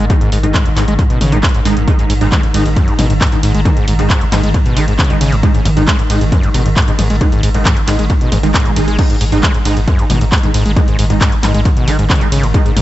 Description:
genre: driving peak-time techno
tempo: 135 BPM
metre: 4/4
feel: straight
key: unclear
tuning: A4 = 440 Hz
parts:
  - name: screaming distorted acid line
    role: riff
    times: 0.0-12.8 s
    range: G#1 to G#3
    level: -18 LUFS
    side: equal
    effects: distortion, chorus, sidechain pumping, dub echo
  - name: saturated sub bass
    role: bass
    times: 0.0-12.8 s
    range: G#1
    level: -17 LUFS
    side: equal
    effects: tube saturation, sidechain pumping, low-pass filter
  - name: swarming drone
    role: drone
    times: 0.0-12.8 s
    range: G#2 to D#3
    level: -22 LUFS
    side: right 1 dB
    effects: built-in reverb, sidechain pumping
  - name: rave stab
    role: stabs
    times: 0.1-12.6 s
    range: D#3 to D#4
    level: -20 LUFS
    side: right 1 dB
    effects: chorus, built-in reverb, sidechain pumping, dub echo
  - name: electronic kick drum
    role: drums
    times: 0.1-12.6 s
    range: none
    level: -13 LUFS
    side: equal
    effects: none
  - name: techno drum kit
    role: drums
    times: 0.1-12.8 s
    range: crash cymbal, handclaps, hi-hat, ride cymbal, toms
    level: -19 LUFS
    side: equal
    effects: sidechain pumping on hats, sidechain pumping on cymbals, sidechain pumping on toms, analog delay
  - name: swell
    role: sound effects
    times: 8.3-9.0 s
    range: none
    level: -26 LUFS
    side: right 3 dB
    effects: none
room: light reverb, digital ambience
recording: echo-heavy mix, nothing above 7.9 kHz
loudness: -10 LUFS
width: side -14 dB against mid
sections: 0.0-12.8 A section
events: swell 8.3-9.0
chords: 0.0 G#5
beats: | 0.10 0.54 0.99 1.43 | 1.88 2.32 2.77 3.21 | 3.65 4.10 4.54 4.99 | 5.43 5.88 6.32 6.77 | 7.21 7.65 8.10 8.54 | 8.99 9.43 9.88 10.32 | 10.77 11.21 11.65 12.10 | 12.54

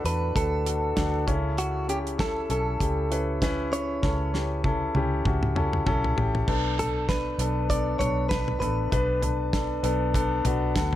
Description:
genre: piano-driven pop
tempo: 98 BPM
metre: 4/4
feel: swing 56% on 16ths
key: unclear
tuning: A4 = 445 Hz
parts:
  - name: direct-recorded clean electric guitar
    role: melody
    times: 0.0-10.4 s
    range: F#4 to D5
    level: -30 LUFS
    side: right 1 dB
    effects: plate reverb
  - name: warm concert grand piano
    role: accompaniment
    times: 0.0-11.0 s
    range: A2 to F#5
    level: -28 LUFS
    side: left 2 dB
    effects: none
  - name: vintage muted fingered electric bass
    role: bass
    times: 0.0-11.0 s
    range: A1 to E2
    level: -29 LUFS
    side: equal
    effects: none
  - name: damped 70s drum kit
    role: drums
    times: 0.1-11.0 s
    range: crash cymbal, hi-hat, kick drum, snare drum, toms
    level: -28 LUFS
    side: equal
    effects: none
room: light reverb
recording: none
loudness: -23 LUFS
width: side -13 dB against mid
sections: 0.0-6.5 A section; 6.5-11.0 B section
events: drum fill 4.0-6.5; grand piano fill 10.5-11.0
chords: 0.0 D; 1.3 A; 6.5 Bm7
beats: 0.36 0.97 | 1.58 2.19 2.81 3.42 | 4.03 4.64 5.25 5.87 | 6.48 7.09 7.70 8.31 | 8.93 9.54 10.15 10.76

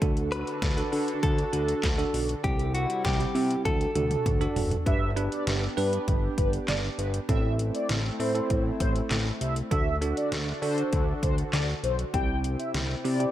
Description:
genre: synth-pop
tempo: 99 BPM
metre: 4/4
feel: straight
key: unclear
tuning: A4 = 440 Hz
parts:
  - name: bell-like tine electric piano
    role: accompaniment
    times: 0.0-13.3 s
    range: C4 to B4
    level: -31 LUFS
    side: right 2 dB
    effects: fast stereo tremolo
  - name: chorused pulse-width pad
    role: sustained chords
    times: 0.0-13.3 s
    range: C3 to A4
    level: -36 LUFS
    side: equal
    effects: none
  - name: fat analog bass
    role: bass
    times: 0.0-13.3 s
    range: F#1 to D3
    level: -29 LUFS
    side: equal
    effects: none
  - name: pop drum kit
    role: drums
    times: 0.0-13.3 s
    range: handclaps, hi-hat, kick drum, snare drum, toms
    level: -29 LUFS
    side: equal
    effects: none
  - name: direct-recorded clean electric guitar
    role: melody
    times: 0.3-4.5 s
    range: F#4 to B4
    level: -32 LUFS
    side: left 1 dB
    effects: spring reverb, tape echo
  - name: mellow synth brass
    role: second line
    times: 4.9-13.3 s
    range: B4 to G5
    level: -32 LUFS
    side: left 1 dB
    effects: chorus, tape echo
room: light reverb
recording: none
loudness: -24 LUFS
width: side -13 dB against mid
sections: 0.0-4.9 A section; 4.9-13.3 B section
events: drum fill 3.7-4.9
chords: 0.0 D; 2.4 C; 3.7 D; 4.9 G; 7.3 Am; 9.7 D; 12.1 C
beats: | 0.02 0.62 1.23 1.83 | 2.44 3.05 3.65 4.26 | 4.87 5.47 6.08 6.68 | 7.29 7.90 8.50 9.11 | 9.71 10.32 10.93 11.53 | 12.14 12.74

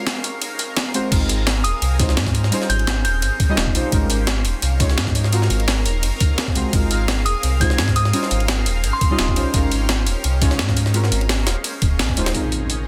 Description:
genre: liquid drum and bass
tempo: 171 BPM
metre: 4/4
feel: swing 54% on 16ths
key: Ab major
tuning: A4 = 441 Hz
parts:
  - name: deep mellow chord stab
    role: accompaniment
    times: 0.0-12.9 s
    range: G3 to Eb5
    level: -28 LUFS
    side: equal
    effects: chorus, digital delay
  - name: shimmering ambient pad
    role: sustained chords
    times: 0.0-12.9 s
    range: Db4 to F5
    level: -32 LUFS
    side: equal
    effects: chorus, built-in reverb, phaser, sidechain pumping
  - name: breakbeat sampler-style drum kit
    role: drums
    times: 0.1-12.8 s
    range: crash cymbal, hi-hat, snare drum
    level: -26 LUFS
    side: equal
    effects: small room ambience
  - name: jungle sampler-style drum kit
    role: drums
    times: 0.1-12.3 s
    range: ride cymbal, snare drum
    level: -29 LUFS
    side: equal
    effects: high-pass filter on cymbals, small room ambience, high-pass filter on snare
  - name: sub bass with octave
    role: bass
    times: 1.1-12.3 s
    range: Eb1 to Ab2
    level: -23 LUFS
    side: equal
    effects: tube saturation
  - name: electronic kick drum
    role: drums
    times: 1.1-12.2 s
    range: none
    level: -22 LUFS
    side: equal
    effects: small room ambience
  - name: glassy synth bell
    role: melody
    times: 1.6-3.5, 7.3-9.4 s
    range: C6 to Ab6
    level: -28 LUFS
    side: equal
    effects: chorus, tremolo, dub echo
  - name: impact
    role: sound effects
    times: 12.3-12.9 s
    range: none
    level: -27 LUFS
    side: equal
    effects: none
room: little or no reverb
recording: dense, heavily limited modern master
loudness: -19 LUFS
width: mono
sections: 0.0-12.3 A section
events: break 0.0-1.1; drop 0.0-12.3; band accent 12.0; impact 12.3-12.9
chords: 0.0 Gbmaj9#11/Ab; 1.1 Ab69; 2.5 Eb13; 3.9 Db69; 5.2 Gbmaj9#11; 6.7 Ab69; 8.1 Eb13; 9.5 Db69; 10.8 Gbmaj9#11/Ab; 11.6 Eb9sus4; 12.3 Ab69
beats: 0.07 0.41 0.77 | 1.12 1.47 1.82 2.17 | 2.52 2.87 3.22 3.57 | 3.92 4.28 4.63 4.98 | 5.33 5.68 6.03 6.38 | 6.73 7.08 7.43 7.78 | 8.13 8.49 8.84 9.19 | 9.54 9.89 10.24 10.59 | 10.94 11.29 11.64 11.99 | 12.35 12.70

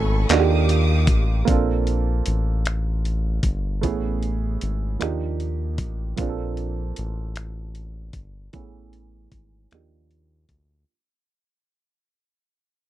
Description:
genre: slow six-eight R&B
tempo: 51 BPM (dotted quarters)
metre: 6/8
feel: straight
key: Bb major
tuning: A4 = 439 Hz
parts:
  - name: breathy flugelhorn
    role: melody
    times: 0.0-0.7 s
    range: A4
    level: -33 LUFS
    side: left 1 dB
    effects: tape echo
  - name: warm baby grand piano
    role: accompaniment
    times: 0.0-10.9 s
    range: E3 to G#5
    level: -26 LUFS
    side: right 10 dB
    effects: low-pass filter
  - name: rich studio string section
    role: sustained chords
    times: 0.0-1.5 s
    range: G4 to Eb6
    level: -30 LUFS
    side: equal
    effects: none
  - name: round analog bass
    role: bass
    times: 0.0-10.8 s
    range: G1 to Eb2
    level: -23 LUFS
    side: left 1 dB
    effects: none
  - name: dusty soul sampler-style drum kit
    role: drums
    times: 0.3-10.7 s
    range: finger snaps, handclaps, hi-hat, kick drum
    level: -23 LUFS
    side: left 1 dB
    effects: none
room: little or no reverb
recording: dry, close 1970s-style studio recording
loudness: -20 LUFS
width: side -13 dB against mid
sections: 0.0-1.5 A section; 1.5-10.9 B section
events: fade-out 1.5-10.9; filter sweep on grand piano 1.5-10.9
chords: 0.3 Ebmaj9; 1.5 Bbmaj9; 3.8 Amaj9; 5.0 Ebmaj9; 6.2 Bbmaj9; 8.5 Amaj9; 9.7 Ebmaj9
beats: 0.30 | 1.47 2.65 | 3.83 5.00 | 6.18 7.36 | 8.53 9.71

